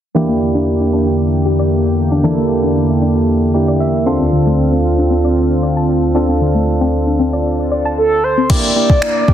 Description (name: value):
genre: dance-pop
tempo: 115 BPM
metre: 4/4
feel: straight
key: unclear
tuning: A4 = 439 Hz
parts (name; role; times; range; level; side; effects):
- soft electric-piano-like synth keys; accompaniment; 0.1-9.3 s; Bb3 to C6; -17 LUFS; right 2 dB; chorus, sidechain pumping
- soft round pluck; arpeggios; 0.1-8.5 s; D3 to A5; -20 LUFS; left 3 dB; chorus, sidechain pumping, tape echo
- warm analog pad; sustained chords; 0.2-8.5 s; D2 to G4; -15 LUFS; equal; chorus, sidechain pumping
- mellow horn-like synth lead; melody; 8.0-9.3 s; A4 to D5; -14 LUFS; right 1 dB; chorus
- smooth R&B drum kit; drums; 8.5-9.3 s; crash cymbal, finger snaps, kick drum; -12 LUFS; equal; soft clipping on snare
room: moderate plate reverb, RT60 1.7 s, digital ambience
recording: dense, heavily limited modern master, low-pass filter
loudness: -12 LUFS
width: side -10 dB against mid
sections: 0.2-8.5 A section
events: filter sweep 0.2-8.5; synth keys fill 3.5-4.3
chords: 0.2 Em7b5; 4.1 Dm7; 8.5 Em7b5